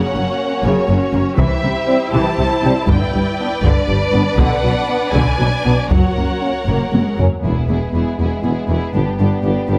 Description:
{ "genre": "cinematic, epic orchestral film score", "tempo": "80 BPM (dotted quarters)", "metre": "6/8", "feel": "straight", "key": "unclear", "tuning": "A4 = 440 Hz", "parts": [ { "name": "warm symphonic violin section", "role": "melody", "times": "0.0-9.8 s", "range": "G4 to A5", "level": "-27 LUFS", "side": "equal", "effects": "none" }, { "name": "warm symphonic violin section", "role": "second line", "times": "0.0-9.8 s", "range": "D4 to D5", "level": "-26 LUFS", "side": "equal", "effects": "none" }, { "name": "warm symphonic viola section", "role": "accompaniment", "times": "0.0-9.8 s", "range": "C#3 to F#4", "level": "-25 LUFS", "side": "equal", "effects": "none" }, { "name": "mellow French horn section", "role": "sustained chords", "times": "0.0-9.8 s", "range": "G3 to D4", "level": "-24 LUFS", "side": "equal", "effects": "none" }, { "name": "rich symphonic double bass section", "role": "bass", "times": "0.1-9.2 s", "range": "E1 to C2", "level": "-23 LUFS", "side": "equal", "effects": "none" }, { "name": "dark symphonic cello section", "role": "bass", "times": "0.2-9.8 s", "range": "E2 to C3", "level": "-23 LUFS", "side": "equal", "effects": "none" }, { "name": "taiko ensemble", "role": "drums", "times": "1.4-8.4 s", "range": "none", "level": "-22 LUFS", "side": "equal", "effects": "none" }, { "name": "mellow tuba", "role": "bass", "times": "7.4-9.8 s", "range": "E1 to G1", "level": "-24 LUFS", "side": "equal", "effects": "none" } ], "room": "moderate scoring stage reverb, RT60 1.5 s", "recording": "close, detailed microphones", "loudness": "-16 LUFS", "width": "mono", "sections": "0.0-7.4 A section; 7.4-9.8 B section", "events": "drum fill 6.7-7.4", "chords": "0.0 F#; 1.4 C; 2.9 G; 4.4 Bm; 5.9 F#; 7.4 E; 8.9 G" }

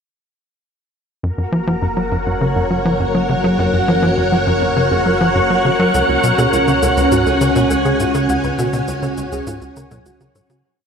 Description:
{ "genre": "ambient, sequencer-driven space music", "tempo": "102 BPM", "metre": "4/4", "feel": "straight", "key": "F# major", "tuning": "A4 = 437 Hz", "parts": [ { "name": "string machine, full ensemble", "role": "sustained chords", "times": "1.2-10.6 s", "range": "C#4 to G#5", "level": "-17 LUFS", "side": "equal", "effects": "ensemble chorus" }, { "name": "soft round pluck", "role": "arpeggios", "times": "1.2-10.6 s", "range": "F#3 to F#5", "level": "-27 LUFS", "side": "right 3 dB", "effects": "chorus, auto-pan, tape echo" }, { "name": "tight sequencer bass", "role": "riff", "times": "1.2-10.6 s", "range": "C#2 to F#3", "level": "-18 LUFS", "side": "equal", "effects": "tape echo" }, { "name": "fat analog bass", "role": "bass", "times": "1.2-10.6 s", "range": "F#1 to C#2", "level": "-26 LUFS", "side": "equal", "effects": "none" }, { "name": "pulsing gated texture", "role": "texture", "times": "1.2-10.7 s", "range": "F#4 to F#5", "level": "-24 LUFS", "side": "equal", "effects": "chorus, built-in reverb" }, { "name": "bongos and cabasa", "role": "percussion", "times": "5.9-10.6 s", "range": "none", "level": "-30 LUFS", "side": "equal", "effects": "tape echo" } ], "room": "wet huge ambient reverb, RT60 7.7 s", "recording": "none", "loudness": "-14 LUFS", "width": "side -6 dB against mid", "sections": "1.2-10.6 A section", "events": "fade-in on synth arpeggio sound 1.2-10.6; fade-out 7.5-10.6", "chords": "1.2 F#; 5.9 C#sus4" }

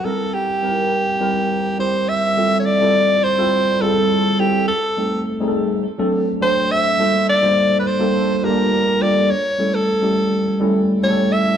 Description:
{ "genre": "pop", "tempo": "104 BPM", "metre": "4/4", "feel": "straight", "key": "F major", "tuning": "A4 = 441 Hz", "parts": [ { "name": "breathy alto saxophone", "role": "melody", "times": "0.0-11.6 s", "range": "G4 to E5", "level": "-18 LUFS", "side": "equal", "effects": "none" }, { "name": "mellow tine electric piano", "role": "accompaniment", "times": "0.0-11.6 s", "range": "F#3 to C5", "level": "-18 LUFS", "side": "equal", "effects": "lush chorus" } ], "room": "wet echo chamber reverb, RT60 1.5 s", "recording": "dark, warm production, lossy compression artefacts", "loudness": "-15 LUFS", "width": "side -8 dB against mid", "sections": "0.0-2.4 A section; 2.4-11.6 B section", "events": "none", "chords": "0.1 C7; 2.4 Fmaj9; 4.7 Am7b5; 5.8 D7; 7.0 Gm9; 9.3 A7" }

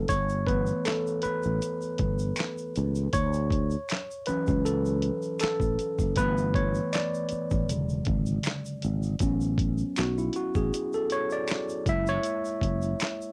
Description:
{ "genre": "R&B, neo-soul", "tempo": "79 BPM", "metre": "4/4", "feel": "straight", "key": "A major", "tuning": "A4 = 440 Hz", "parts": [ { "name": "tine electric piano", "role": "accompaniment", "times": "0.0-13.3 s", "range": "C#3 to E5", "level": "-31 LUFS", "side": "equal", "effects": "overdrive, cassette tape" }, { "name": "sustaining fretless electric bass", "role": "bass", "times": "0.0-12.9 s", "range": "E1 to D2", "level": "-31 LUFS", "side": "equal", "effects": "none" }, { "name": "dusty soul sampler-style drum kit", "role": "drums", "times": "0.1-13.2 s", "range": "handclaps, hi-hat, kick drum, snare drum", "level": "-33 LUFS", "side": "equal", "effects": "cassette tape" }, { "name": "egg shaker and finger snaps", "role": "percussion", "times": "0.1-13.3 s", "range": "none", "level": "-44 LUFS", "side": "equal", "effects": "none" } ], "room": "light reverb", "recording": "home recording on cassette", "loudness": "-28 LUFS", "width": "mono", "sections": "0.0-9.2 A section; 9.2-13.3 B section", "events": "tine electric piano solo 0.0-9.2, 9.2-13.3", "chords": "0.1 G69; 3.1 Dmaj9; 6.2 G69; 7.7 E13; 9.2 A69; 11.9 F#7" }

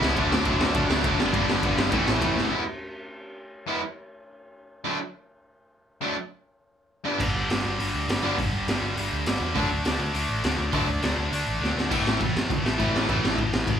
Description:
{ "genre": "punk rock", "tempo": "204 BPM", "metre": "4/4", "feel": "straight", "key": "unclear", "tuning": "A4 = 436 Hz", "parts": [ { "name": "distorted electric guitar", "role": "riff", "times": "0.0-13.8 s", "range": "G2 to E4", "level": "-29 LUFS", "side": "left 6 dB", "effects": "distortion" }, { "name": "high-gain distorted guitar", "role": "riff", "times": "0.0-2.5, 7.2-13.8 s", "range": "E2 to D4", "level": "-27 LUFS", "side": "equal", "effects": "distortion" }, { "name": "raw garage guitar", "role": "riff", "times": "0.0-13.8 s", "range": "G2 to E4", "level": "-29 LUFS", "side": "right 6 dB", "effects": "overdrive" }, { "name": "overdriven picked electric bass", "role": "bass", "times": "0.0-2.5, 7.2-13.8 s", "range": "F#1 to F#2", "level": "-31 LUFS", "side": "equal", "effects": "none" }, { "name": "raw garage drum kit", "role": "drums", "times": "0.0-2.4, 7.2-13.7 s", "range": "crash cymbal, hi-hat, kick drum, ride cymbal, snare drum", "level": "-28 LUFS", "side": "equal", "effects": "none" } ], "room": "light reverb", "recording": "band playing live in one room", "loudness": "-22 LUFS", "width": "side -8 dB against mid", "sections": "0.0-2.5 A section; 2.5-11.9 B section; 11.9-13.8 C section", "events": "drum fill 2.4, 11.6; half time 2.5-11.9", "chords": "0.2 D; 1.2 G; 1.9 A; 2.5 E; 4.9 D; 7.1 G; 9.6 D; 11.9 A5" }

